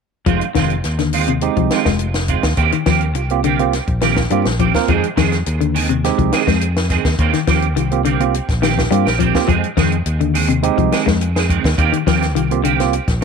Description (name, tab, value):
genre	afrobeat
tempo	104 BPM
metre	4/4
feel	straight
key	F dorian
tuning	A4 = 440 Hz
part	clean electric guitar	arpeggios	0.3-12.8 s	C3 to Ab3	-20 LUFS	left 14 dB	none
part	clean electric guitar	stabs	0.3-13.2 s	Eb3 to Ab4	-21 LUFS	right 12 dB	ensemble chorus, tape echo
part	fingered electric bass	bass	0.3-13.2 s	F1 to G2	-19 LUFS	equal	none
part	compact cocktail drum kit	drums	0.3-13.2 s	hi-hat, kick drum, snare drum	-20 LUFS	left 1 dB	none
part	barky tine electric piano	accompaniment	1.4-13.2 s	Ab3 to Bb4	-20 LUFS	right 14 dB	overdrive
room	light reverb, small room ambience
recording	1960s-style stereo with parts hard left and right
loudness	-14 LUFS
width	side -6 dB against mid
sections	0.3-13.2 A section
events	none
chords	0.3 Fm7; 2.6 Eb6; 4.9 Fm7; 7.2 Eb6; 9.5 Fm7; 11.8 Eb6